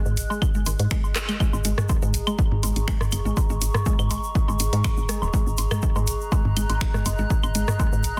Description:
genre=minimal techno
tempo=122 BPM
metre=4/4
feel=straight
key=unclear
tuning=A4 = 440 Hz
part: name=warbly tape-like pad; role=texture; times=0.0-8.2 s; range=G#4 to F#6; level=-35 LUFS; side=equal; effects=chorus, built-in reverb, sidechain pumping
part: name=woody FM bass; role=bass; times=0.1-8.1 s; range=D#1 to G#2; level=-28 LUFS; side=equal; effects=sidechain pumping
part: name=egg shaker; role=percussion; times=0.1-8.2 s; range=none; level=-38 LUFS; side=equal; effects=none
part: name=house drum kit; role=drums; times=0.2-8.1 s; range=finger snaps, handclaps, hi-hat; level=-32 LUFS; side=equal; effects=studio ambience, soft clipping on snare
part: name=mallet-like synth pluck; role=riff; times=0.3-8.2 s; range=D#3 to G#3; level=-34 LUFS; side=equal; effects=analog chorus, sidechain pumping, dub echo
part: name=booming analog drum machine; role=percussion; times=0.3-8.2 s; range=claves, rim click, toms, woodblock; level=-30 LUFS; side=equal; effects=studio ambience, soft clipping on snare
part: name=electronic kick drum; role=drums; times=0.4-7.9 s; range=none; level=-26 LUFS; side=equal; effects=studio ambience
room=little or no reverb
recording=dense, heavily limited modern master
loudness=-23 LUFS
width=mono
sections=0.0-1.4 A section; 1.4-8.2 B section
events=drum fill 1.2; band accent 1.2; drop 1.4-8.2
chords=0.0 G#5; 1.4 G#sus4

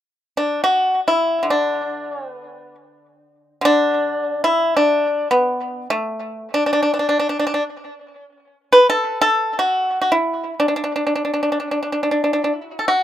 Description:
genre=chinese traditional, Chinese solo plucked strings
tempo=free time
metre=none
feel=none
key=D gong mode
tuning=A4 = 441 Hz
part: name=pipa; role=solo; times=0.4-13.0 s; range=D3 to B4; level=-16 LUFS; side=equal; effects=tape echo
room=moderate small room ambience, RT60 0.5 s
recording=rough home demo mix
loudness=-16 LUFS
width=side -11 dB against mid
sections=0.0-12.9 A section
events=none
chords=none

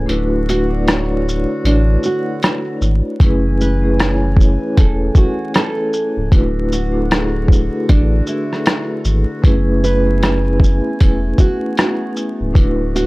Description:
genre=lo-fi hip hop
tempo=77 BPM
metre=4/4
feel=swing 61% on 16ths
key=F# minor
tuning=A4 = 439 Hz
part: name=vibraphone with medium mallets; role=accompaniment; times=0.0-13.1 s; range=A3 to G#5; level=-20 LUFS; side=left 1 dB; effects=cassette tape
part: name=warm woodwind section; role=sustained chords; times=0.0-13.1 s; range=D3 to G#5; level=-30 LUFS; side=equal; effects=none
part: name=warm sub bass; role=bass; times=0.0-13.1 s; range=C#1 to A1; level=-17 LUFS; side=equal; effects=tube saturation
part: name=lo-fi sampler-style drum kit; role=drums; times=0.1-13.1 s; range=hi-hat, kick drum, rim click, shaker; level=-13 LUFS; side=equal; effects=none
part: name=nylon-string guitar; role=melody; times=0.5-13.1 s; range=D4 to B4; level=-24 LUFS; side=right 2 dB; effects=tape echo
room=studio reverb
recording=dry, gritty hardware recording, vinyl crackle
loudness=-13 LUFS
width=side -21 dB against mid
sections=0.0-13.1 A section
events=break 0.0-3.2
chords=0.1 D6; 3.2 F#m11; 6.3 D6; 9.4 F#m11; 12.6 D6

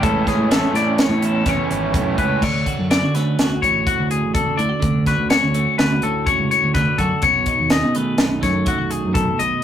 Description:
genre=math rock and midwest emo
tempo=125 BPM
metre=5/4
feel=straight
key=unclear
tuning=A4 = 440 Hz
part: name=twelve-string electric guitar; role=accompaniment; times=0.0-9.6 s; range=E2 to G#4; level=-24 LUFS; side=right 6 dB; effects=none
part: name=twangy electric guitar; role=arpeggios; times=0.0-9.6 s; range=F#4 to D#5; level=-21 LUFS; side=left 6 dB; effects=none
part: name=raw garage guitar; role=riff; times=0.0-2.4 s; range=A2 to E4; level=-22 LUFS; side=right 3 dB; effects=overdrive
part: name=growling fingered electric bass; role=bass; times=0.0-9.5 s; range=G#1 to D3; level=-22 LUFS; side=equal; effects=overdrive
part: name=crisp fusion drum kit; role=drums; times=0.0-9.5 s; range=crash cymbal, hi-hat, kick drum, snare drum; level=-21 LUFS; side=equal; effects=none
room=moderate studio reverb, RT60 0.5 s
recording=rough rehearsal-room recording, warm saturation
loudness=-16 LUFS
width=side -10 dB against mid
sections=0.0-2.4 A section; 2.4-9.6 B section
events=none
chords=0.0 Amaj7; 2.4 Dmaj7; 7.2 B7

